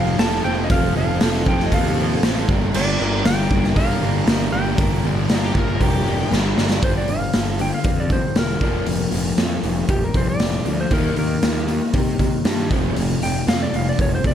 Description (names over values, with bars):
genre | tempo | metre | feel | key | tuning
classic rock | 117 BPM | 4/4 | straight | G minor | A4 = 440 Hz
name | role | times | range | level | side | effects
clean lap steel guitar | melody | 0.0-14.3 s | G4 to A5 | -27 LUFS | equal | none
picked steel-string acoustic guitar | accompaniment | 0.0-6.8 s | G2 to Bb4 | -32 LUFS | left 2 dB | none
raw garage guitar | riff | 0.0-14.3 s | G2 to Bb4 | -27 LUFS | right 12 dB | overdrive, spring reverb
sludgy distorted guitar | riff | 0.0-14.3 s | F2 to Eb4 | -25 LUFS | left 11 dB | overdrive
fuzz picked electric bass | bass | 0.0-14.3 s | E1 to C3 | -23 LUFS | equal | overdrive
raw garage drum kit | drums | 0.2-14.3 s | crash cymbal, hi-hat, kick drum, snare drum | -21 LUFS | equal | none
octave-fuzz lead guitar | second line | 5.3-6.3 s | F4 to Bb4 | -28 LUFS | left 3 dB | distortion
room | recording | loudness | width
light reverb | none | -17 LUFS | side -10 dB against mid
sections
0.0-6.8 A section; 6.8-14.3 B section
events
drum fill 6.3-6.8; electric slide guitar solo 6.8-14.3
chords
0.0 F; 2.5 Gm; 6.8 G5; 8.6 Bb/F; 10.9 Eb; 12.7 F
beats
0.19 | 0.70 1.21 1.72 2.24 | 2.75 3.26 3.77 4.28 | 4.79 5.30 5.81 6.32 | 6.83 7.34 7.86 8.37 | 8.88 9.39 9.90 10.41 | 10.92 11.44 11.95 12.46 | 12.97 13.48 13.99